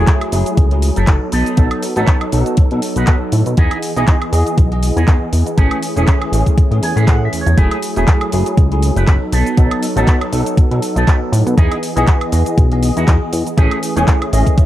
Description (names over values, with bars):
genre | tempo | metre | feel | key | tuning
nu-disco, nu disco | 120 BPM | 4/4 | swing 55% on 16ths | unclear | A4 = 440 Hz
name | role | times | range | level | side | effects
bell-like tine electric piano | accompaniment | 0.0-14.7 s | E3 to D#5 | -19 LUFS | equal | ensemble chorus, slapback echo
electric guitar with an envelope filter | riff | 0.0-14.7 s | A3 to G#5 | -23 LUFS | right 2 dB | lush chorus
chorused synth bass | bass | 0.0-14.4 s | E1 to B2 | -15 LUFS | equal | sidechain pumping
electronic kick drum | drums | 0.1-14.7 s | none | -11 LUFS | equal | overdrive
house drum kit | drums | 0.1-14.7 s | cabasa, handclaps, hi-hat, woodblock | -24 LUFS | equal | none
reverse cymbal | sound effects | 14.6-14.7 s | none | -47 LUFS | left 8 dB | none
room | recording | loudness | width
little or no reverb | none | -12 LUFS | side -13 dB against mid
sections
0.0-14.7 A section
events
clean electric guitar fill 6.6-7.6, 14.1-14.7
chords
0.0 F#m9; 1.3 B7; 3.6 Emaj7; 5.6 Amaj7; 7.6 F#m9; 9.3 B7; 11.6 Emaj7; 13.6 Amaj7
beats
0.08 0.58 1.08 | 1.58 2.08 2.58 3.08 | 3.58 4.08 4.58 5.08 | 5.58 6.08 6.58 7.08 | 7.58 8.08 8.58 9.08 | 9.58 10.08 10.58 11.08 | 11.58 12.08 12.58 13.08 | 13.58 14.08 14.58